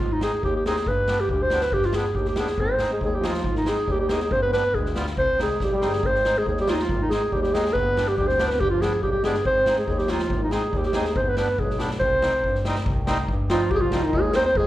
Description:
klezmer; 140 BPM; 2/4; straight; C harmonic minor; A4 = 439 Hz
mellow clarinet; melody; 0.0-14.7 s; Eb4 to C5; -22 LUFS; equal; slapback echo
rich double bass; bass; 0.0-14.7 s; G1 to Ab2; -28 LUFS; left 1 dB
street-band drum kit; drums; 0.0-14.7 s; kick drum, snare drum; -29 LUFS; equal
accordion; accompaniment; 0.2-14.5 s; G3 to F4; -31 LUFS; equal; slapback echo
dark trombone; second line; 2.6-14.7 s; Eb3 to C4; -31 LUFS; right 1 dB; slapback echo
light reverb; live gig heard through the venue's PA, club reverb; -20 LUFS; side -14 dB against mid
0.0-6.0 A section; 6.0-12.9 A section; 12.9-14.7 B section
drum fill 5.6-6.0
0.0 Ab; 0.9 G; 2.6 Ab; 4.3 G; 5.2 Cm; 6.0 Ab; 7.8 G; 9.5 Ab; 11.2 G; 12.0 Cm
0.42 | 0.85 1.29 | 1.72 2.15 | 2.58 3.02 | 3.45 3.88 | 4.31 4.74 | 5.17 5.61 | 6.04 6.46 | 6.89 7.32 | 7.75 8.18 | 8.61 9.04 | 9.46 9.89 | 10.31 10.74 | 11.17 11.59 | 12.02 12.44 | 12.86 13.29 | 13.71 14.13 | 14.55

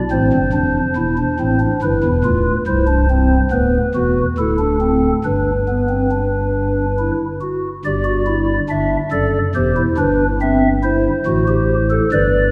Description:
classical, baroque-style 3-part fugue for pipe organ; 70 BPM; 3/4; straight; G major; A4 = 440 Hz
pipe organ, stopped flute; solo; 0.1-12.5 s; C1 to E5; -17 LUFS; equal
wet scoring stage reverb, RT60 2.0 s; -17 LUFS; mono
0.0-7.8 A section; 7.8-12.5 B section
0.1 F; 1.8 Em; 2.7 C; 3.5 D69; 4.4 D5; 5.2 G; 7.8 G5; 9.6 Em; 10.4 C/G
| 0.12 0.97 1.82 | 2.67 3.52 4.38 | 5.24 6.11 6.98 | 7.84 8.70 9.56 | 10.41 11.26 12.12

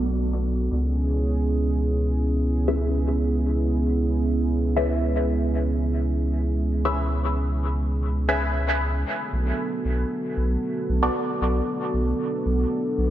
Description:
dub techno; 115 BPM; 4/4; straight; B dorian; A4 = 442 Hz
dark analog pad; sustained chords; 0.0-13.1 s; B3 to A4; -26 LUFS; right 2 dB; chorus
filtered dub chord stab; stabs; 0.0-11.2 s; B3 to E5; -28 LUFS; left 1 dB; phaser, dub echo
round analog bass; bass; 0.0-13.1 s; B1 to C#2; -23 LUFS; equal
moderate church reverb, RT60 3.4 s; dreamy mix soaked in reverb; -22 LUFS; side -12 dB against mid
0.0-9.1 A section; 9.1-13.1 B section
filter sweep on synth stab 0.0-9.1, 9.1-13.1
0.0 Bm7; 0.7 C#m7; 9.1 Bm7
0.20 | 0.72 1.24 1.76 2.29 | 2.81 3.33 3.85 4.37 | 4.89 5.42 5.94 6.46 | 6.98 7.50 8.03 8.55 | 9.07 9.59 10.11 10.63 | 11.15 11.68 12.20 12.72

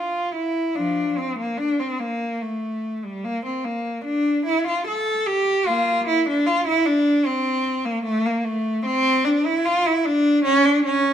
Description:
classical, baroque-style suite movement for unaccompanied cello; 74 BPM; 3/4; rubato; F major, D minor from 8.0 s; A4 = 440 Hz
rich cello; solo; 0.0-11.1 s; F3 to A4; -19 LUFS; equal
wet stone room reverb, RT60 1.3 s; -19 LUFS; side -9 dB against mid
0.0-11.1 A section
| 0.76 1.58 2.40 | 3.23 4.05 4.86 | 5.66 6.46 7.26 | 8.05 8.85 9.65 | 10.45

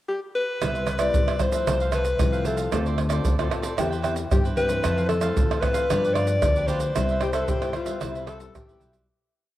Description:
samba and choro; 113 BPM; 4/4; straight; C major; A4 = 441 Hz
breathy alto saxophone; melody; 0.1-8.5 s; G4 to D5; -26 LUFS; left 2 dB; cassette tape
cavaquinho; accompaniment; 0.6-9.1 s; E4 to G5; -32 LUFS; right 4 dB; cassette tape
nylon-string guitar; accompaniment; 0.6-9.1 s; F2 to A4; -32 LUFS; left 6 dB; cassette tape
upright bass; bass; 0.6-9.0 s; A1 to C3; -28 LUFS; equal
tube shaker, surdo, pandeiro and tamborim; percussion; 0.6-9.1 s; -26 LUFS; right 2 dB
breathy tenor saxophone; second line; 7.2-9.0 s; E4 to A4; -33 LUFS; left 6 dB; cassette tape, analog delay
moderate spring reverb, RT60 2.6 s; home recording on cassette; -21 LUFS; side -14 dB against mid
0.0-0.6 pickup bar; 0.6-9.1 A section
fade-out 7.0-9.1
0.0 N.C.; 0.6 Cmaj7; 1.7 Fmaj7/C; 2.7 Dm7; 3.8 Cmaj7/E; 4.8 Fmaj7; 5.9 G7; 7.0 Cmaj7
0.08 | 0.61 1.14 1.67 2.20 | 2.73 3.26 3.79 4.32 | 4.85 5.38 5.91 6.44 | 6.96 7.49 8.02 8.55

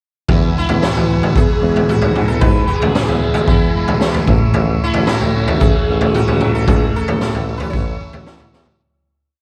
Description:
psychedelic rock; 113 BPM; 4/4; straight; A4 = 445 Hz
combo organ; sustained chords; 0.3-8.8 s; B4 to E6; -31 LUFS; equal
fuzz guitar; riff; 0.3-8.8 s; E2 to E4; -24 LUFS; equal; distortion, phaser
clear tuba; bass; 0.3-8.6 s; F#1 to E3; -23 LUFS; equal
raw garage drum kit; drums; 0.3-8.8 s; kick drum, snare drum, toms; -18 LUFS; equal
sitar; melody; 0.6-8.5 s; E4 to C#5; -24 LUFS; equal; delay
moderate lush hall reverb, RT60 1.8 s, small room ambience; dreamy mix soaked in reverb; -15 LUFS; mono
0.3-8.8 pre-chorus
fade-out 6.7-8.8; drum fill 8.5
0.3 E; 4.3 A
| 0.29 0.82 1.35 1.88 | 2.41 2.95 3.48 4.01 | 4.55 5.08 5.61 6.14 | 6.68 7.21 7.74 8.27

